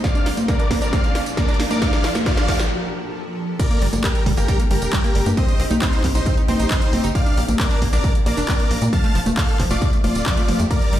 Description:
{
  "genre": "uplifting trance",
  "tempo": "135 BPM",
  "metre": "4/4",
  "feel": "straight",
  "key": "unclear",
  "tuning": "A4 = 441 Hz",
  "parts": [
    { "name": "big supersaw lead", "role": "melody", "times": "0.0-11.0 s", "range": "Eb4 to A5", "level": "-25 LUFS", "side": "equal", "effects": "sidechain pumping, low-pass filter, ping-pong delay" },
    { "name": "shimmering ambient pad", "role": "sustained chords", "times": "0.0-11.0 s", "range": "F2 to Bb4", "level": "-30 LUFS", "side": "equal", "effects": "chorus, built-in reverb, sidechain pumping" },
    { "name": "analog pluck", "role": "arpeggios", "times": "0.0-11.0 s", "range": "F3 to Eb4", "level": "-28 LUFS", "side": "right 3 dB", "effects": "chorus, sidechain pumping, ping-pong delay" },
    { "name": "electronic kick drum", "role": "drums", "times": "0.0-10.8 s", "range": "none", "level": "-19 LUFS", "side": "equal", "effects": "overdrive, small room ambience" },
    { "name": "techno drum kit", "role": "drums", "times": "0.0-11.0 s", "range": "congas, crash cymbal, handclaps, hi-hat, snare drum, tambourine", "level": "-24 LUFS", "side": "left 1 dB", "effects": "overdrive, sidechain pumping on perc, small room ambience, sidechain pumping on hats, sidechain pumping on cymbals" },
    { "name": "riser", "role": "sound effects", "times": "0.0-2.7 s", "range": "none", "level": "-29 LUFS", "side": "equal", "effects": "none" },
    { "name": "tight sequencer bass", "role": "bass", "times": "3.8-11.0 s", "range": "Eb1 to Bb2", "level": "-22 LUFS", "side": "equal", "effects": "sidechain pumping" }
  ],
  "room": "light reverb",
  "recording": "played on a big sound system in a bare room, stone room reverb",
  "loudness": "-17 LUFS",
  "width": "side -12 dB against mid",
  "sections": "0.0-3.6 A section; 3.6-11.0 B section",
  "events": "build-up 0.0-3.6; drum fill 0.0-2.7; riser 0.0-2.7; break 2.7-3.6; drop 3.6-11.0",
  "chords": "0.0 Bb; 1.8 Fadd9; 3.6 Gm; 5.4 Cm; 7.2 Bb; 8.9 Fadd9",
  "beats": "| 0.04 0.48 0.93 1.37 | 1.82 2.26 2.71 3.15 | 3.60 4.04 4.48 4.93 | 5.37 5.82 6.26 6.71 | 7.15 7.59 8.04 8.48 | 8.93 9.37 9.82 10.26 | 10.71"
}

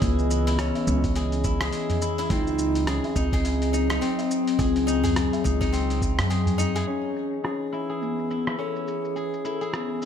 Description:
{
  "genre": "organic downtempo",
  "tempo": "105 BPM",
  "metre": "4/4",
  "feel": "swing 59% on 16ths",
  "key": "C# minor",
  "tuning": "A4 = 440 Hz",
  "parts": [
    { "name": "breathy mellow low Native American-style wooden flute", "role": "melody", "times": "0.0-10.1 s", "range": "B3 to A4", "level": "-28 LUFS", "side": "left 1 dB", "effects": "ping-pong delay" },
    { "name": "warbly tape-like pad", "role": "sustained chords", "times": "0.0-10.1 s", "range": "E3 to D#5", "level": "-33 LUFS", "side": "right 1 dB", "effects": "chorus, built-in reverb, sidechain pumping" },
    { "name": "steel-string zither", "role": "arpeggios", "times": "0.0-10.1 s", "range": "B#3 to G#4", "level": "-29 LUFS", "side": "left 4 dB", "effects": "low-pass filter, ping-pong delay" },
    { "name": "upright bass", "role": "bass", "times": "0.0-6.8 s", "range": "C#2 to F#2", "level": "-26 LUFS", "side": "right 1 dB", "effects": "none" },
    { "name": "dusty soul sampler-style drum kit", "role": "drums", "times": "0.0-10.1 s", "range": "hi-hat, rim click, shaker", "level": "-33 LUFS", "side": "equal", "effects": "low-pass filter on hats, low-pass filter on perc, low-pass filter on snare, low-pass filter on room" },
    { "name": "electronic kick drum", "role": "drums", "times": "0.0-6.2 s", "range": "none", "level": "-27 LUFS", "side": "right 1 dB", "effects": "none" },
    { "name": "tabla", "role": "percussion", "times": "0.2-6.9 s", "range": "none", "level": "-32 LUFS", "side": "right 2 dB", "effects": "none" }
  ],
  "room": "moderate concert hall reverb, RT60 2.0 s",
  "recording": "none",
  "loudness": "-22 LUFS",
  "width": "side -8 dB against mid",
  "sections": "0.0-6.9 A section; 6.9-10.1 B section",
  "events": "filter sweep on drum 6.9-10.1",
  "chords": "0.0 C#m9; 2.3 G#7/C#; 6.9 C#m9",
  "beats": "| 0.02 0.59 1.16 1.73 | 2.30 2.88 3.45 4.02 | 4.59 5.16 5.73 6.30 | 6.88 7.45 8.02 8.59 | 9.16 9.73"
}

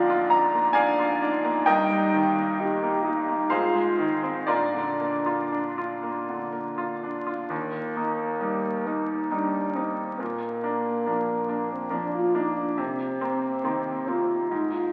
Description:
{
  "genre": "classical, romantic duo for French horn and grand piano",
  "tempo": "59-70 BPM",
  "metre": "3/4",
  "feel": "rubato",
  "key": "Eb major",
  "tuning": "A4 = 441 Hz",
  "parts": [
    { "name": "warm French horn", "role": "melody", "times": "0.0-14.9 s", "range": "Bb3 to G4", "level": "-31 LUFS", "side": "equal", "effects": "none" },
    { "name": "bright grand piano", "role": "accompaniment", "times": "0.0-14.9 s", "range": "Eb2 to Bb5", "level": "-27 LUFS", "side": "equal", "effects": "none" }
  ],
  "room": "wet scoring stage reverb, RT60 1.7 s",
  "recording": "very old 78 rpm record, vinyl crackle",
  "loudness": "-26 LUFS",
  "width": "mono",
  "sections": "0.0-7.5 A section; 7.5-14.9 B section",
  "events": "none",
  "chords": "0.0 Bb7/Ab; 1.7 Eb/G; 3.5 Fm7/Ab; 4.5 Bb; 7.5 Eb; 10.2 Bb; 12.8 Cm7",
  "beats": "0.77 | 1.67 2.59 3.53 | 4.51 5.52 6.54 | 7.51 8.41 9.32 | 10.20 11.07 11.93 | 12.79 13.64 14.51"
}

